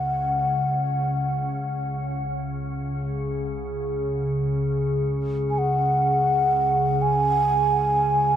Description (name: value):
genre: world meditative, free-time meditation music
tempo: free time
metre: none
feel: none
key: unclear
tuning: A4 = 440 Hz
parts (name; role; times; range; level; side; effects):
- mellow hollow xiao; melody; 0.0-8.4 s; F#5 to G#5; -22 LUFS; equal; ping-pong delay
- organ-like drone; drone; 0.0-8.4 s; C#2 to C#3; -26 LUFS; equal; ensemble chorus, built-in reverb
- glass harmonica; texture; 2.9-8.4 s; G#4; -29 LUFS; equal; none
room: moderate huge ambient reverb, RT60 7.6 s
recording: none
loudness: -21 LUFS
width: side -10 dB against mid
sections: 0.0-8.4 A section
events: none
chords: none